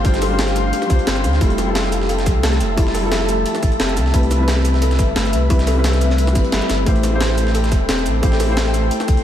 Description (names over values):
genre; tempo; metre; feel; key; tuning
liquid drum and bass; 176 BPM; 4/4; straight; unclear; A4 = 440 Hz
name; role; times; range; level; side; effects
felt-muted upright piano; accompaniment; 0.0-9.2 s; F3 to C5; -22 LUFS; left 1 dB; ping-pong delay
glassy FM pad; sustained chords; 0.0-9.2 s; G4 to C6; -24 LUFS; left 2 dB; ensemble chorus, built-in reverb, sidechain pumping
warm sub bass; bass; 0.0-9.2 s; E1 to D2; -19 LUFS; equal; none
breakbeat sampler-style drum kit; drums; 0.0-9.2 s; hi-hat, shaker, snare drum; -25 LUFS; equal; studio reverb
breakbeat sampler-style drum kit; drums; 0.0-9.2 s; hi-hat, snare drum; -27 LUFS; equal; high-pass filter on hats, studio reverb, high-pass filter on snare, high-pass filter on room
electronic kick drum; drums; 0.0-9.2 s; none; -17 LUFS; equal; overdrive, studio reverb
kalimba; arpeggios; 0.2-8.9 s; A3 to A4; -26 LUFS; equal; tape echo
room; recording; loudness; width
moderate huge ambient reverb, RT60 7.8 s; dreamy mix soaked in reverb; -14 LUFS; side -10 dB against mid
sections
0.0-9.2 A section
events
none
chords
0.0 G7sus4; 1.4 Fmaj9; 4.0 Cmaj7; 6.9 Am7